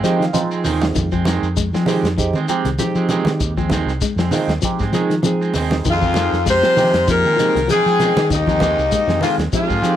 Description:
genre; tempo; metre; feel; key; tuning
afrobeat; 98 BPM; 4/4; swing 55% on 16ths; F minor; A4 = 440 Hz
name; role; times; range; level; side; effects
barky tine electric piano; accompaniment; 0.0-10.0 s; Ab3 to G5; -23 LUFS; right 5 dB; overdrive, phaser
clean electric guitar; arpeggios; 0.0-10.0 s; Eb3 to Ab3; -24 LUFS; left 7 dB; none
electric guitar at the edge of break-up; stabs; 0.0-10.0 s; Eb3 to C4; -25 LUFS; right 7 dB; spring reverb
fingered electric bass; bass; 0.0-10.0 s; C2 to F3; -21 LUFS; equal; none
shekere; percussion; 0.0-10.0 s; none; -28 LUFS; left 6 dB; none
warm soul drum kit; drums; 0.1-10.0 s; hi-hat, kick drum, snare drum; -25 LUFS; equal; none
congas; percussion; 0.3-9.4 s; none; -24 LUFS; right 3 dB; none
clear horn section; melody; 5.9-10.0 s; Eb4 to C5; -17 LUFS; left 1 dB; none
edgy baritone saxophone; second line; 5.9-10.0 s; Eb2 to C3; -24 LUFS; left 7 dB; none
room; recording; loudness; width
moderate club reverb, RT60 0.5 s; none; -15 LUFS; side -11 dB against mid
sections
0.0-10.0 A section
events
tine electric piano fill 0.0-1.0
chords
0.0 Fm7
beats
0.35 | 0.96 1.57 2.19 2.80 | 3.41 4.02 4.63 5.24 | 5.86 6.47 7.08 7.69 | 8.30 8.92 9.53

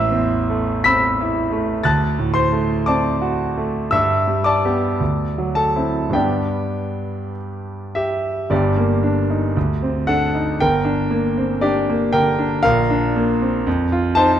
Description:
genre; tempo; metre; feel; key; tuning
classical, romantic character piece for solo piano; 49-62 BPM; 2/4; rubato; G major, G minor from 8.5 s; A4 = 440 Hz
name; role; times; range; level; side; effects
clear concert grand piano; solo; 0.0-14.4 s; G1 to B6; -16 LUFS; equal; none
room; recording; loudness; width
wet scoring stage reverb, RT60 1.7 s; dark, warm production; -16 LUFS; side -10 dB against mid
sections
0.0-8.5 A section; 8.5-14.4 B section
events
none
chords
0.0 Am; 1.9 D7; 3.9 G; 5.0 D9; 6.1 G; 8.5 Gm; 9.6 D7; 10.6 Gm; 12.6 Bb; 13.7 F7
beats
0.86 | 1.85 2.86 | 3.91 5.00 | 6.15 7.36 | 8.51 9.55 | 10.58 11.61 | 12.63 13.66

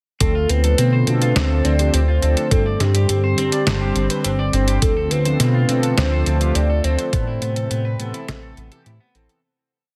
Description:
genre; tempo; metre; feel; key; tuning
synthwave; 104 BPM; 4/4; straight; D dorian; A4 = 443 Hz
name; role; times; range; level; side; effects
soft octave-layered synth lead; melody; 0.2-8.9 s; G4 to D5; -26 LUFS; equal; chorus, phaser, digital delay
warm analog pad; sustained chords; 0.2-9.4 s; C3 to F4; -27 LUFS; equal; chorus, vintage 12-bit sampler grit, sidechain pumping
electric guitar at the edge of break-up; arpeggios; 0.2-9.4 s; B3 to D5; -31 LUFS; equal; lush chorus, delay
mellow synth brass; stabs; 0.2-9.4 s; E3 to C5; -31 LUFS; equal; chorus
chorused synth bass; bass; 0.2-9.3 s; G1 to B2; -21 LUFS; equal; sidechain pumping
detuned 8-bit digital drum machine; drums; 0.2-9.4 s; hi-hat, snare drum; -25 LUFS; equal; small room reverb
electronic kick drum; drums; 0.2-7.2 s; none; -22 LUFS; equal; small room reverb
room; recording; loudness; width
light reverb; none; -18 LUFS; mono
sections
0.2-9.4 verse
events
fade-out 6.4-9.4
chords
0.2 Dm7; 2.5 Gsus4; 4.8 Dm7; 7.1 Amadd9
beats
| 0.21 0.78 1.36 1.94 | 2.51 3.09 3.67 4.25 | 4.82 5.40 5.97 6.55 | 7.13 7.71 8.28 8.86

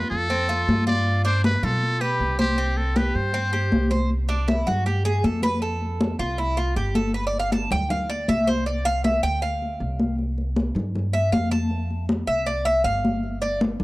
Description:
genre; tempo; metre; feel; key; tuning
latin, Cuban son and guajira; 158 BPM; 4/4; straight; C major; A4 = 440 Hz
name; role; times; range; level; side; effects
trumpet with metal mute; melody; 0.0-3.9 s; G4 to D5; -25 LUFS; left 1 dB; none
Cuban tres; arpeggios; 0.0-13.6 s; C4 to A5; -26 LUFS; right 1 dB; none
upright bass; bass; 0.0-13.8 s; G1 to B2; -25 LUFS; equal; none
congas; percussion; 0.1-13.8 s; none; -26 LUFS; left 1 dB; none
room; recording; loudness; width
small room ambience; dry, close 1970s-style studio recording; -20 LUFS; side -20 dB against mid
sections
0.0-4.1 A section; 4.1-13.8 B section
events
Cuban tres solo 4.1-13.8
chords
0.0 F; 1.1 G7; 2.6 C5; 5.6 F; 7.1 G5; 8.7 Csus2; 11.7 F; 13.2 G5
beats
0.30 0.68 | 1.06 1.44 1.82 2.20 | 2.58 2.96 3.34 3.72 | 4.10 4.48 4.86 5.24 | 5.62 6.00 6.38 6.76 | 7.15 7.53 7.91 8.29 | 8.67 9.05 9.43 9.81 | 10.19 10.57 10.95 11.33 | 11.71 12.09 12.47 12.85 | 13.23 13.61

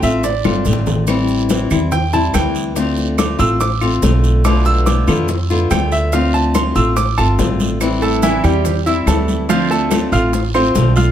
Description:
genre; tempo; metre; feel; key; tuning
latin, Cuban son and guajira; 143 BPM; 4/4; straight; unclear; A4 = 439 Hz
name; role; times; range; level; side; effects
flamenco guitar; accompaniment; 0.0-11.1 s; B2 to F4; -18 LUFS; left 3 dB; none
bright baby grand piano; arpeggios; 0.0-11.1 s; E3 to F6; -19 LUFS; right 4 dB; none
upright bass; bass; 0.0-11.1 s; G1 to F2; -17 LUFS; right 1 dB; none
bongos; percussion; 0.0-11.1 s; none; -26 LUFS; left 6 dB; none
congas; percussion; 0.0-11.1 s; none; -22 LUFS; left 2 dB; none
guiro; percussion; 0.0-11.1 s; none; -31 LUFS; right 7 dB; none
maracas; percussion; 0.0-11.1 s; none; -32 LUFS; right 8 dB; none
claves; percussion; 0.5-10.8 s; none; -31 LUFS; right 7 dB; none
room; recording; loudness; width
light reverb; none; -13 LUFS; side -10 dB against mid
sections
0.0-7.8 A section; 7.8-11.1 B section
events
grand piano solo 0.0-7.8; drum fill 0.5-1.1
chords
0.0 Dm7; 1.1 Am7; 2.8 Dm7; 4.4 Bm7b5; 6.1 Dm7; 7.8 Am7; 9.5 Dm7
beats
0.24 0.66 | 1.08 1.50 1.92 2.34 | 2.77 3.19 3.61 4.03 | 4.45 4.87 5.29 5.71 | 6.13 6.55 6.97 7.39 | 7.81 8.23 8.65 9.07 | 9.49 9.91 10.33 10.75

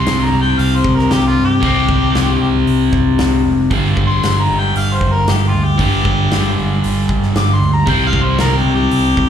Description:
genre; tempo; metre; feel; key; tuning
blues rock power trio and southern rock; 115 BPM; 4/4; straight; unclear; A4 = 440 Hz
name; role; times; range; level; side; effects
warm harmonica; melody; 0.0-9.3 s; F4 to D6; -19 LUFS; left 2 dB; overdrive, slapback echo
overdriven semi-hollow guitar; riff; 0.0-9.3 s; G2 to C4; -16 LUFS; left 2 dB; spring reverb
vintage muted fingered electric bass; bass; 0.0-9.3 s; F1 to G2; -17 LUFS; right 1 dB; none
huge arena drum kit; drums; 0.1-9.3 s; hi-hat, kick drum, snare drum; -20 LUFS; right 1 dB; none
room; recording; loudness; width
little or no reverb; live gig heard through the venue's PA, club reverb; -12 LUFS; side -9 dB against mid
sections
0.0-9.3 A section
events
harmonica solo 0.0-9.3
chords
0.0 C5; 3.7 G5; 7.9 C5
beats
0.07 0.59 1.11 | 1.63 2.15 2.67 3.19 | 3.71 4.23 4.75 5.27 | 5.79 6.31 6.83 7.35 | 7.87 8.39 8.91

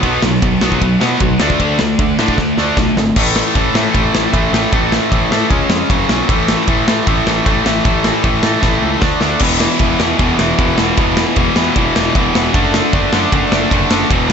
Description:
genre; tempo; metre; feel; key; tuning
punk rock; 154 BPM; 4/4; straight; unclear; A4 = 440 Hz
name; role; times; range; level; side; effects
distorted electric guitar; riff; 0.0-14.3 s; E2 to D4; -17 LUFS; left 14 dB; overdrive
tight distorted guitar; riff; 0.0-14.3 s; E2 to D4; -17 LUFS; right 14 dB; distortion
tight distorted guitar; riff; 0.0-3.0, 9.4-14.3 s; E2 to D4; -21 LUFS; left 1 dB; distortion
fuzz picked electric bass; bass; 0.0-14.3 s; E1 to B2; -20 LUFS; equal; overdrive
big rock drum kit; drums; 0.0-14.3 s; crash cymbal, kick drum, ride cymbal, snare drum; -16 LUFS; equal; none
room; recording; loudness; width
little or no reverb; nothing above 7.9 kHz; -11 LUFS; side -7 dB against mid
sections
0.0-3.2 A section; 3.2-14.3 B section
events
drum fill 2.4-3.2, 8.6-9.4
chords
0.0 B5; 1.4 D5; 3.2 A5; 5.5 C#5; 5.9 F#5; 6.3 A5; 9.0 D5; 9.4 E5; 12.5 D/F#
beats
| 0.03 0.42 0.81 1.21 | 1.60 1.99 2.38 2.77 | 3.16 3.55 3.94 4.33 | 4.72 5.12 5.51 5.90 | 6.29 6.68 7.07 7.46 | 7.85 8.24 8.63 9.02 | 9.41 9.80 10.20 10.59 | 10.98 11.37 11.76 12.15 | 12.54 12.93 13.32 13.71 | 14.10

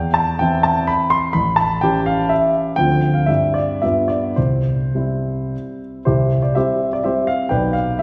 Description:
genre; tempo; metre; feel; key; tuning
classical, romantic triple-time dance for piano with dotted rhythms; 99-135 BPM; 3/4; rubato; C major; A4 = 442 Hz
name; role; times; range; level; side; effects
warm grand piano; solo; 0.0-8.0 s; A1 to C6; -18 LUFS; equal; none
room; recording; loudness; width
wet scoring stage reverb, RT60 2.2 s; heard from further back in the room; -18 LUFS; mono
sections
0.0-6.1 A section; 6.1-8.0 B section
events
none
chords
0.0 C/E; 1.3 A7; 2.8 Dm7; 3.3 C/G; 3.8 G7; 4.4 C; 7.5 G7/B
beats
0.40 0.89 | 1.34 1.82 2.31 | 2.78 3.28 3.83 | 4.37 4.95 5.53 | 6.06 6.56 7.05 | 7.51 8.00

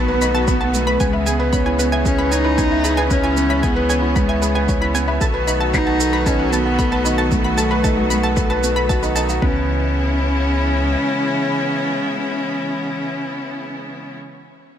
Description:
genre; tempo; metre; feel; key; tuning
piano and strings electronica; 114 BPM; 4/4; straight; C# minor; A4 = 440 Hz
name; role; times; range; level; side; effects
dark cello; melody; 0.0-14.2 s; G#3 to D#4; -22 LUFS; left 1 dB; shimmer reverb
bright symphonic string section; sustained chords; 0.0-14.2 s; C#3 to F#4; -25 LUFS; equal; shimmer reverb
analog pluck; arpeggios; 0.0-9.7 s; B4 to B5; -25 LUFS; left 1 dB; chorus, sidechain pumping, tape echo, shimmer reverb
felt-muted upright piano; riff; 0.0-14.8 s; B3 to F#5; -22 LUFS; right 1 dB; shimmer reverb
warm sub bass; bass; 0.0-11.0 s; B1 to C#2; -22 LUFS; equal; sidechain pumping
shaker; drums; 0.2-9.4 s; none; -27 LUFS; right 6 dB; none
electronic kick drum; drums; 0.5-9.5 s; none; -21 LUFS; equal; none
room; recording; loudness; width
light reverb; none; -16 LUFS; side -9 dB against mid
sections
0.0-9.4 A section; 9.4-13.6 B section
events
drop 0.0-9.4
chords
0.0 B7; 1.0 C#m7; 5.2 B7; 9.4 C#m7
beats
0.48 | 1.00 1.53 2.06 2.58 | 3.11 3.63 4.16 4.69 | 5.21 5.74 6.26 6.79 | 7.32 7.84 8.37 8.90 | 9.42 9.95 10.48 11.00 | 11.53 12.05 12.58 13.11

